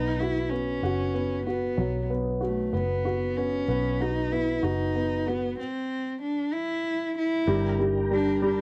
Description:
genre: six-eight pop ballad.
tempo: 63 BPM (dotted quarters).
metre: 6/8.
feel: straight.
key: unclear.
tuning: A4 = 440 Hz.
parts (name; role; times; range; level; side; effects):
dark cello; melody; 0.0-8.6 s; A3 to E4; -32 LUFS; equal; none.
dark upright piano; accompaniment; 0.0-8.6 s; F#3 to F#4; -30 LUFS; equal; cassette tape.
vintage muted fingered electric bass; bass; 0.0-8.6 s; F#1 to B1; -33 LUFS; equal; none.
mellow tonewheel organ; sustained chords; 7.5-8.6 s; D4 to Bb5; -37 LUFS; equal; chorus vibrato, slow rotary speaker, cassette tape.
room: light reverb.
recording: home recording on cassette.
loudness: -27 LUFS.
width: mono.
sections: 0.0-7.5 A section; 7.5-8.6 B section.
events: stop 5.6-7.5.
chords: 0.0 B; 5.6 N.C.; 7.5 Gm.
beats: 0.83 | 1.78 2.73 | 3.68 4.63 | 5.58 6.53 | 7.48 8.43.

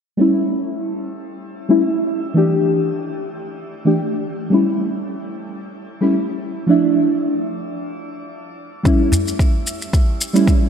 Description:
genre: organic downtempo.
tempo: 111 BPM.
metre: 4/4.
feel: swing 55% on 16ths.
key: unclear.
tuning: A4 = 440 Hz.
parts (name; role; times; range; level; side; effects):
deep mellow chord stab; accompaniment; 0.2-10.5 s; E3 to G4; -18 LUFS; equal; chorus, phaser, sidechain pumping, ping-pong delay, shimmer reverb.
electronic kick drum; drums; 8.9-10.6 s; none; -15 LUFS; equal; none.
shaker; drums; 8.9-10.6 s; none; -26 LUFS; left 2 dB; none.
udu; percussion; 9.1-9.2 s; none; -19 LUFS; equal; none.
room: wet lush hall reverb, RT60 2.6 s.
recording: bright 1980s-style digital production.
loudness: -16 LUFS.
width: side -7 dB against mid.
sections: 0.2-10.7 A section.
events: none.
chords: 0.2 A7; 2.4 Emadd11; 4.5 A7; 6.7 Dmadd9; 8.8 A7.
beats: | 0.20 0.74 1.28 1.82 | 2.36 2.90 3.44 3.98 | 4.52 5.07 5.61 6.15 | 6.69 7.23 7.77 8.31 | 8.85 9.39 9.93 10.47.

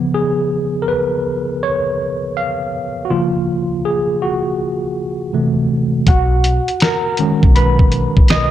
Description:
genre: lo-fi hip hop.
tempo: 81 BPM.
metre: 4/4.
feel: swing 65% on 16ths.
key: unclear.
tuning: A4 = 438 Hz.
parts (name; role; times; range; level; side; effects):
tine electric piano; accompaniment; 0.0-8.5 s; C3 to D#6; -16 LUFS; equal; overdrive, fast stereo tremolo, cassette tape, low-pass filter.
upright bass; bass; 6.1-8.5 s; A#1 to B1; -16 LUFS; equal; none.
lo-fi sampler-style drum kit; drums; 6.1-8.5 s; hi-hat, kick drum, snare drum; -12 LUFS; equal; vintage 12-bit sampler grit.
room: moderate spring reverb, RT60 2.0 s.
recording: dark, warm production.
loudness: -14 LUFS.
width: side -12 dB against mid.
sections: 0.0-6.1 A section; 6.1-8.5 B section.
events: tine electric piano solo 0.0-6.1, 6.1-8.5.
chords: 0.0 C#7; 3.1 F#maj7/C#; 5.3 C6; 6.1 B6.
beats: | 0.14 0.88 1.62 2.36 | 3.10 3.85 4.59 5.33 | 6.07 6.81 7.55 8.29.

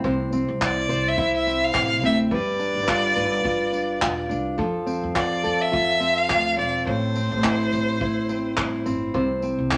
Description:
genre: acoustic pop.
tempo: 105 BPM.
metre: 4/4.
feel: swing 55% on 16ths.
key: C major.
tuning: A4 = 440 Hz.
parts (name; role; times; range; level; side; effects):
fingerpicked steel-string acoustic guitar; accompaniment; 0.0-9.8 s; A2 to C5; -26 LUFS; equal; none.
upright bass; bass; 0.0-9.8 s; E1 to F2; -32 LUFS; equal; none.
vintage brush drum kit; drums; 0.0-9.8 s; handclaps, kick drum, tambourine; -30 LUFS; equal; none.
rich violin; melody; 0.6-8.8 s; C5 to F5; -26 LUFS; equal; none.
room: wet studio reverb, RT60 0.7 s.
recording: none.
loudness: -23 LUFS.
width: mono.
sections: 0.0-9.8 A section.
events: none.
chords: 0.0 C; 2.3 G7; 4.6 F; 6.9 Am; 9.1 C.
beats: | 0.04 0.61 1.18 1.75 | 2.32 2.88 3.45 4.02 | 4.59 5.16 5.73 6.30 | 6.87 7.44 8.01 8.58 | 9.15 9.72.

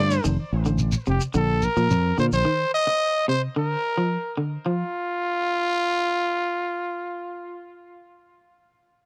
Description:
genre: afrobeat.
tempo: 109 BPM.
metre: 4/4.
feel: straight.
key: unclear.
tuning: A4 = 442 Hz.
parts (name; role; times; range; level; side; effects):
growling trumpet; melody; 0.0-7.6 s; F4 to Eb5; -27 LUFS; equal; tape echo.
electric guitar at the edge of break-up; arpeggios; 0.0-4.8 s; C3 to F3; -28 LUFS; equal; none.
fingered electric bass; bass; 0.0-2.4 s; F1 to Bb2; -25 LUFS; equal; none.
shekere; percussion; 0.1-2.5 s; none; -31 LUFS; equal; none.
room: light reverb.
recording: dry, close 1970s-style studio recording.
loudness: -24 LUFS.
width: mono.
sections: 0.0-4.7 A section; 4.7-6.9 B section.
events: none.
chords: 0.2 F7; 1.4 Bb; 2.5 Cm; 3.6 Bb; 4.7 N.C..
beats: | 0.25 0.80 1.35 1.91 | 2.46 3.01 3.56 4.11 | 4.66 5.21 5.76 6.31.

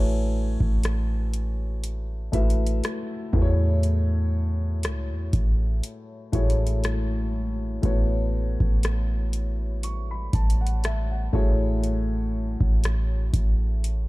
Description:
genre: contemporary R&B.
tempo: 60 BPM.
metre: 4/4.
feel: swing 54% on 16ths.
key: A major.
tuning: A4 = 440 Hz.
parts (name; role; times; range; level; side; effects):
dark grand piano; accompaniment; 0.0-14.1 s; A2 to C#6; -30 LUFS; left 2 dB; none.
clean 808-style bass; bass; 0.0-14.1 s; A1 to E2; -24 LUFS; equal; none.
booming analog drum machine; drums; 0.6-14.1 s; hi-hat, kick drum, rim click; -26 LUFS; equal; none.
room: little or no reverb.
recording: dark, warm production.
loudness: -22 LUFS.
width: side -20 dB against mid.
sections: 0.0-14.1 A section.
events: none.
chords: 0.0 A69; 3.3 F#m9; 7.8 A69; 11.3 Amaj13.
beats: 0.83 1.83 2.83 | 3.83 4.83 5.83 6.83 | 7.83 8.84 9.84 10.84 | 11.84 12.84 13.84.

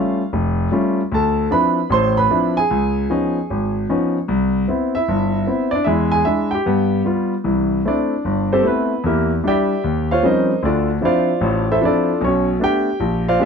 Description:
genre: solo jazz.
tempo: 152 BPM.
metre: 4/4.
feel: swing 66% on 8ths.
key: A minor, C major from 7.5 s.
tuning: A4 = 440 Hz.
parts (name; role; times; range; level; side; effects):
warm concert grand piano; solo; 0.0-13.5 s; E#1 to C6; -16 LUFS; equal; none.
room: light reverb.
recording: band playing live in one room.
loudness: -16 LUFS.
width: side -6 dB against mid.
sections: 0.0-7.5 A section; 7.5-13.5 B section.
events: grand piano solo 7.5-13.5.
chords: 0.0 Aaug7; 1.1 Dm9; 2.7 C#9; 4.3 Cmaj7; 5.9 E7; 6.7 G7; 7.5 C6; 9.0 Em7b5; 9.8 Eb13; 10.6 Dm9; 12.2 A9/B.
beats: 0.33 0.72 | 1.12 1.51 1.91 2.31 | 2.70 3.10 3.49 3.89 | 4.28 4.68 5.08 5.47 | 5.87 6.26 6.66 7.05 | 7.45 7.85 8.24 8.64 | 9.04 9.43 9.83 10.23 | 10.62 11.02 11.41 11.81 | 12.21 12.60 13.00 13.39.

